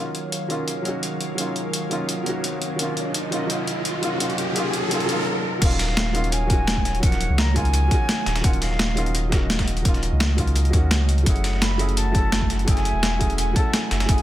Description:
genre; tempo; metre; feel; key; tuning
liquid drum and bass; 170 BPM; 4/4; straight; Eb minor; A4 = 440 Hz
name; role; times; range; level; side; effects
felt-muted upright piano; accompaniment; 0.0-14.2 s; F3 to A4; -28 LUFS; equal; dub echo
airy breathy pad; sustained chords; 0.0-14.2 s; Eb3 to Gb5; -32 LUFS; right 2 dB; chorus, sidechain pumping
riser; sound effects; 1.7-5.3 s; none; -28 LUFS; equal; none
breakbeat sampler-style drum kit; drums; 0.1-14.2 s; crash cymbal, hi-hat, snare drum; -26 LUFS; equal; overdrive
mellow concert flute; melody; 5.6-14.2 s; F5 to Cb6; -29 LUFS; equal; digital delay
warm sub bass; bass; 5.6-14.2 s; Eb1 to Eb2; -22 LUFS; equal; none
dusty soul sampler-style drum kit; drums; 5.6-14.2 s; hi-hat, snare drum; -31 LUFS; left 1 dB; overdrive, high-pass filter on hats, high-pass filter on snare, high-pass filter on room
electronic kick drum; drums; 5.6-14.2 s; none; -21 LUFS; equal; none
room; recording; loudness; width
light reverb; none; -19 LUFS; side -13 dB against mid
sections
0.0-5.6 A section; 5.6-14.2 B section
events
build-up 0.0-5.6; riser 1.7-5.3; stop 5.3-5.6; drop 5.6-14.2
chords
0.0 Ebm9; 11.3 Gbm9

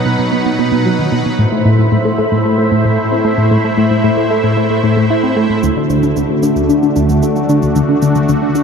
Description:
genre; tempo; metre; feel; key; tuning
ambient, sequencer-driven space music; 113 BPM; 4/4; straight; unclear; A4 = 440 Hz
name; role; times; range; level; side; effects
sweeping resonant pad; sustained chords; 0.0-8.6 s; A2 to F#5; -15 LUFS; left 1 dB; chorus
tight sequenced synth; riff; 0.0-8.6 s; D2 to E4; -13 LUFS; equal; chorus, phaser, tape echo
bubbling stepped-filter texture; texture; 0.0-8.6 s; B5 to D6; -27 LUFS; right 2 dB; chorus, built-in reverb
analog drone; bass; 6.5-8.6 s; D2; -36 LUFS; right 1 dB; none
bongos and cabasa; percussion; 5.6-8.6 s; none; -27 LUFS; right 5 dB; tape echo
room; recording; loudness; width
wet huge ambient reverb, RT60 7.3 s; dark, warm production; -11 LUFS; side -6 dB against mid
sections
0.0-5.6 A section; 5.6-8.6 B section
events
filter sweep on synth arpeggio sound 0.0-5.6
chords
0.0 B; 1.4 Am; 5.6 D

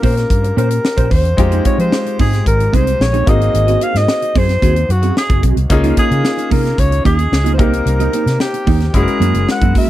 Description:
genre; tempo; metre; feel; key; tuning
polished 1980s jazz-funk pop; 111 BPM; 4/4; straight; Ab major; A4 = 440 Hz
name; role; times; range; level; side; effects
warm alto saxophone; melody; 0.0-9.9 s; Gb4 to Gb5; -19 LUFS; equal; none
clear baby grand piano; accompaniment; 0.0-9.9 s; Ab3 to Bb4; -21 LUFS; left 4 dB; wide subtle chorus
mellow electric guitar; riff; 0.0-9.9 s; Bb3 to C5; -20 LUFS; right 6 dB; ensemble chorus
vintage muted fingered electric bass; bass; 0.0-9.7 s; Gb1 to F3; -16 LUFS; equal; none
tight funk drum kit; drums; 0.0-9.9 s; hi-hat, kick drum, snare drum; -16 LUFS; equal; none
room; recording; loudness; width
little or no reverb; dry, close 1970s-style studio recording; -12 LUFS; side -14 dB against mid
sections
0.0-9.9 A section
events
none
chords
0.0 Eb13 (rootless); 1.4 Fm7; 3.3 Ab7; 5.7 Db69; 7.6 Cm7; 8.9 Gb7

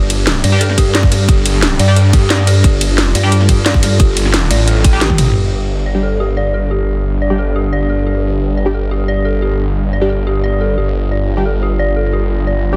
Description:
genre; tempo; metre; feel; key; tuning
dark technical drum and bass; 177 BPM; 4/4; straight; unclear; A4 = 436 Hz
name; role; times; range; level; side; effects
dark analog pad; sustained chords; 0.0-12.8 s; G3 to G4; -25 LUFS; equal; lush chorus, sidechain pumping
dark detuned synth bell; arpeggios; 0.0-12.6 s; G4 to G5; -23 LUFS; equal; chorus, phaser, sidechain pumping, dub echo
snarling distorted saw bass; bass; 0.0-12.8 s; G1 to G2; -17 LUFS; equal; distortion, tube saturation, sidechain pumping
drum and bass drum kit; drums; 0.1-5.3 s; hi-hat, ride cymbal, snare drum, toms; -19 LUFS; equal; none
band-passed chord stab; stabs; 0.5-12.8 s; G3 to G4; -24 LUFS; equal; chorus, phaser, dub echo
electronic kick drum; drums; 0.8-5.2 s; none; -13 LUFS; equal; none
room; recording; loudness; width
light reverb; dense, heavily limited modern master; -14 LUFS; mono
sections
0.0-5.4 A section; 5.4-12.8 B section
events
drop 0.0-5.4; drum fill 5.0-5.4; band accent 5.0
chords
0.0 G5

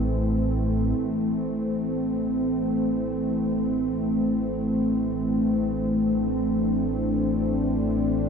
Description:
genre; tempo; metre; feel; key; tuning
ambient; free time; none; none; A minor; A4 = 436 Hz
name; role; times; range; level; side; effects
sweeping resonant pad; sustained chords; 0.0-8.3 s; E3 to E4; -23 LUFS; equal; wide subtle chorus
deep rumbling drone; drone; 0.0-8.3 s; A1 to A2; -32 LUFS; equal; built-in reverb, lush chorus
bronze singing bowl; texture; 0.0-8.3 s; none; barely audible; none; none
room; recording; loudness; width
wet cathedral reverb, RT60 6.1 s; dark, warm production; -22 LUFS; side -6 dB against mid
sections
1.0-8.3 A section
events
fade-in on synth drone 1.0-8.3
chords
0.0 Am

